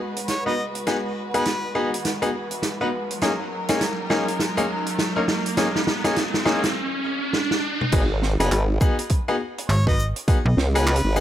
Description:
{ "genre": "glitch hop", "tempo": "102 BPM", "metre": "4/4", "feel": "swing 61% on 16ths", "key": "G# minor", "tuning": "A4 = 435 Hz", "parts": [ { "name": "dark studio string section", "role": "sustained chords", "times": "0.0-6.7 s", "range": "F#3 to B4", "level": "-30 LUFS", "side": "equal", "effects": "sidechain pumping" }, { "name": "riser", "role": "sound effects", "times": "1.1-7.9 s", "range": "none", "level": "-30 LUFS", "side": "right 1 dB", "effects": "none" }, { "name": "vintage drum kit", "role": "drums", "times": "0.2-11.2 s", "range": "crash cymbal, handclaps, hi-hat, shaker, snare drum, toms", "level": "-26 LUFS", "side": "right 1 dB", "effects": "none" }, { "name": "clear harmonica", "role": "melody", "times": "0.3-1.8, 8.4-11.2 s", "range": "B4 to D#5", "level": "-30 LUFS", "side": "equal", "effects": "digital delay" }, { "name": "bright concert grand piano", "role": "stabs", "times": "0.5-11.2 s", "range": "A#3 to B4", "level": "-26 LUFS", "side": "left 2 dB", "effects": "sidechain pumping, low-pass filter, digital delay" }, { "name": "formant-sweep wobble bass", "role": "bass", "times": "7.9-11.2 s", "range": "F#1 to C#2", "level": "-20 LUFS", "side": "equal", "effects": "chorus, tube saturation" }, { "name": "electronic kick drum", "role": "drums", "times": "7.9-10.4 s", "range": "none", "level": "-20 LUFS", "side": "equal", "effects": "none" }, { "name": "slap-like FM bass", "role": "bass", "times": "9.7-10.6 s", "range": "G#1 to B1", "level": "-19 LUFS", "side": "equal", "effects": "none" } ], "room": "light reverb, small room ambience", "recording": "none", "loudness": "-20 LUFS", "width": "side -11 dB against mid", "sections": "0.0-7.9 A section; 7.9-11.2 B section", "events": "build-up 0.0-7.9; drum fill 0.0-6.7, 7.3-7.9; riser 1.1-7.9; break 6.7-7.9; drop 7.9-11.2", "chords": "0.0 G#m7; 3.2 F#6; 7.9 G#m7" }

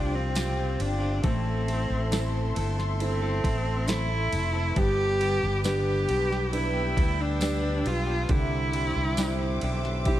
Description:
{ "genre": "pop ballad", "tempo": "68 BPM", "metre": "4/4", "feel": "straight", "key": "unclear", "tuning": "A4 = 440 Hz", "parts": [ { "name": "clear cello", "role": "melody", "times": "0.0-10.2 s", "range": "C4 to G4", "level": "-30 LUFS", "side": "right 1 dB", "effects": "none" }, { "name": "warm upright piano", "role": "accompaniment", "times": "0.0-10.2 s", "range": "D3 to C5", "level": "-35 LUFS", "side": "right 4 dB", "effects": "none" }, { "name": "warm studio string section", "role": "sustained chords", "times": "0.0-10.2 s", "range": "F4 to E6", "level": "-36 LUFS", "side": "right 1 dB", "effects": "none" }, { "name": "direct-recorded clean electric guitar", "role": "arpeggios", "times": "0.0-10.2 s", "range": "G2 to A4", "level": "-35 LUFS", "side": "left 6 dB", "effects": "spring reverb" }, { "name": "fretless electric bass", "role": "bass", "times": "0.0-10.2 s", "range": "F1 to D2", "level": "-28 LUFS", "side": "equal", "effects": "none" }, { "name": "downlifter", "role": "sound effects", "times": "0.1-4.8 s", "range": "none", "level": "barely audible", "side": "none", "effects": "none" }, { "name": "smooth R&B drum kit", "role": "drums", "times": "0.4-10.2 s", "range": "kick drum, ride cymbal, snare drum", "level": "-31 LUFS", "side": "equal", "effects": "overdrive" }, { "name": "tambourine", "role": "percussion", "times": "0.4-9.4 s", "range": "none", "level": "-43 LUFS", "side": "right 10 dB", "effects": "none" } ], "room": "light reverb, small room reverb", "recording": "dark, warm production", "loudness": "-24 LUFS", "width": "side -13 dB against mid", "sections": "0.0-10.2 A section", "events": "none", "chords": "0.0 Fsus2; 1.2 Am; 4.8 G; 8.3 Cadd9" }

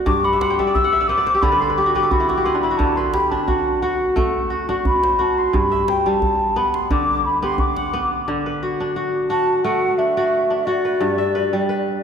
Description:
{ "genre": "west african traditional, West African string and xylophone music", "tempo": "88 BPM", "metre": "4/4", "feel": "straight", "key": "D mixolydian", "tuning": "A4 = 440 Hz", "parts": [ { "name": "kora", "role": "arpeggios", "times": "0.0-12.0 s", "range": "G2 to G5", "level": "-20 LUFS", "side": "left 1 dB", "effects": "none" }, { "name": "mellow hollow jazz flute", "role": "melody", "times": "0.1-12.0 s", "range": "D5 to E6", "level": "-20 LUFS", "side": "equal", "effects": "none" }, { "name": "djembe", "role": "percussion", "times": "0.1-8.0 s", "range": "none", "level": "-26 LUFS", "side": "right 1 dB", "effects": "none" } ], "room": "wet church reverb, RT60 3.1 s", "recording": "recorded in a church or concert hall", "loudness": "-16 LUFS", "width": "side -7 dB against mid", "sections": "0.0-8.3 A section; 8.3-12.0 B section", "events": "flute solo 0.0-8.3; kora fill 0.2-2.8", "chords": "0.1 G; 2.8 D; 5.5 G; 8.3 D; 11.0 G" }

